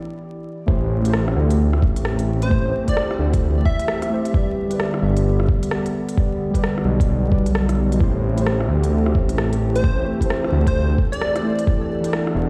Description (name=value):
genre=future garage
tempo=131 BPM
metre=4/4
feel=swing 62% on 16ths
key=A minor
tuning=A4 = 441 Hz
part: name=muted felt-like synth keys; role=accompaniment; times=0.0-12.5 s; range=E3 to D5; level=-28 LUFS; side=equal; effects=chorus, sidechain pumping, tape echo
part: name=warbly tape-like pad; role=sustained chords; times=1.3-12.5 s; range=D3 to G4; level=-29 LUFS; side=equal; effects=chorus, built-in reverb, sidechain pumping
part: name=dark detuned saw bass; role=bass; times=0.7-12.5 s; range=E1 to D2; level=-22 LUFS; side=equal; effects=sidechain pumping
part: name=electronic kick drum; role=drums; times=0.7-11.8 s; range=none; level=-21 LUFS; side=equal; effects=overdrive
part: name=organic electronic drum kit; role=drums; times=1.1-12.3 s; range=hi-hat, rim click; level=-31 LUFS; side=equal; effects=none
part: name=plucky unison lead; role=melody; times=2.4-4.3, 9.8-11.7 s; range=C5 to E5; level=-29 LUFS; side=equal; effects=tape echo
part: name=flickering grainy texture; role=texture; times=9.3-12.5 s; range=A4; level=-37 LUFS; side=equal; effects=none
room=little or no reverb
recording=played on a big sound system in a bare room, stone room reverb, vinyl crackle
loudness=-20 LUFS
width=mono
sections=0.7-12.5 A section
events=break 0.0-0.7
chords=0.0 Em7; 0.7 Am7; 4.3 G; 8.0 Am7; 11.7 Em7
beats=0.22 | 0.68 1.14 1.59 2.05 | 2.51 2.97 3.43 3.88 | 4.34 4.80 5.26 5.72 | 6.17 6.63 7.09 7.55 | 8.01 8.46 8.92 9.38 | 9.84 10.30 10.76 11.21 | 11.67 12.13